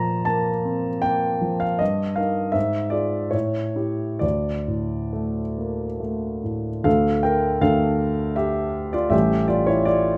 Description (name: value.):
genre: classical, romantic character piece for solo piano.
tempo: 64-82 BPM.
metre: 3/4.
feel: rubato.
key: D minor.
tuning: A4 = 440 Hz.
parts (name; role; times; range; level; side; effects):
warm concert grand piano; solo; 0.0-10.2 s; A1 to Bb5; -23 LUFS; equal; none.
room: light reverb.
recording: close, detailed microphones.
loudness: -23 LUFS.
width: mono.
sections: 0.0-6.9 A section; 6.9-10.2 A section.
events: none.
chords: 0.0 Bb5; 1.8 Eb/G; 2.5 E7b9/G#; 3.3 A7; 4.2 D5; 6.9 Dm; 9.1 A7.